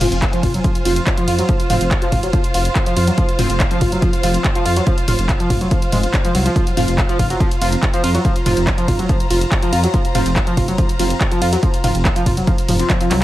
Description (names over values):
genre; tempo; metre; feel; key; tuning
driving peak-time techno; 142 BPM; 4/4; straight; unclear; A4 = 440 Hz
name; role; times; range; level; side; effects
overdriven synth lead; riff; 0.0-13.2 s; F3 to F4; -21 LUFS; equal; distortion, chorus, sidechain pumping, digital delay
rave stab; stabs; 0.0-13.2 s; F3 to F4; -26 LUFS; equal; chorus, built-in reverb, sidechain pumping, digital delay
dark detuned saw bass; bass; 0.0-13.2 s; F1 to F2; -19 LUFS; equal; sidechain pumping
punchy analog drum machine; drums; 0.0-13.2 s; handclaps, hi-hat, ride cymbal, toms; -23 LUFS; equal; sidechain pumping on hats, sidechain pumping on cymbals, sidechain pumping on toms
rich studio string section; texture; 0.0-13.2 s; F4 to Bb5; -25 LUFS; right 1 dB; sidechain pumping
electronic kick drum; drums; 0.2-13.0 s; none; -18 LUFS; equal; none
room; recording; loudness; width
light reverb, digital ambience; none; -14 LUFS; side -15 dB against mid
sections
0.0-13.2 A section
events
none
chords
0.0 F5